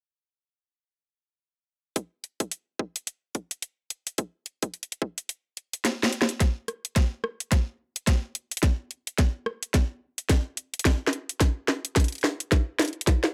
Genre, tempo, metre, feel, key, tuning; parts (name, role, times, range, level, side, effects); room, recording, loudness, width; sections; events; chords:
glitch hop; 108 BPM; 4/4; swing 59% on 16ths
drum and bass drum kit; drums; 2.0-13.3 s; hi-hat, rim click, snare drum; -28 LUFS; equal; overdrive
electronic kick drum; drums; 2.0-13.2 s; -25 LUFS; equal; overdrive, high-pass filter on kick
light reverb; dry, gritty hardware recording, transformer saturation; -28 LUFS; mono
2.0-6.4 A section; 6.4-13.3 B section
drum fill 5.8-6.4, 6.4-13.3; build-up 6.4-13.3